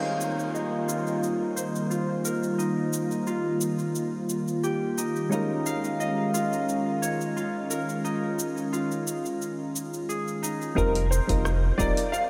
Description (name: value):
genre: sunset chillout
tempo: 88 BPM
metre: 4/4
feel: swing 53% on 16ths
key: unclear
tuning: A4 = 438 Hz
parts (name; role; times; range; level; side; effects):
- soft electric-piano-like synth keys; accompaniment; 0.0-12.0 s; G3 to Bb4; -35 LUFS; equal; chorus, diffuse ambient delay
- airy breathy pad; sustained chords; 0.0-10.7 s; Eb3 to F4; -32 LUFS; equal; chorus
- Celtic harp; arpeggios; 0.0-12.3 s; Eb4 to F5; -34 LUFS; equal; low-pass filter, diffuse ambient delay
- deep house drum kit; drums; 0.2-12.3 s; hi-hat, rim click, shaker; -40 LUFS; equal; none
- dark concert grand piano; melody; 10.8-12.2 s; Bb4 to F5; -30 LUFS; equal; ensemble chorus, tape echo
- warm sub bass; bass; 10.8-11.9 s; Eb1 to F1; -27 LUFS; equal; none
- electronic kick drum; drums; 10.8-11.9 s; none; -33 LUFS; equal; none
room: wet huge ambient reverb, RT60 8.4 s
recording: dreamy mix soaked in reverb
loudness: -28 LUFS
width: mono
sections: 0.0-10.8 A section; 10.8-12.3 B section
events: filter sweep on harp 0.0-10.8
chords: 0.0 F9sus4; 5.3 Eb9sus4; 10.8 F9sus4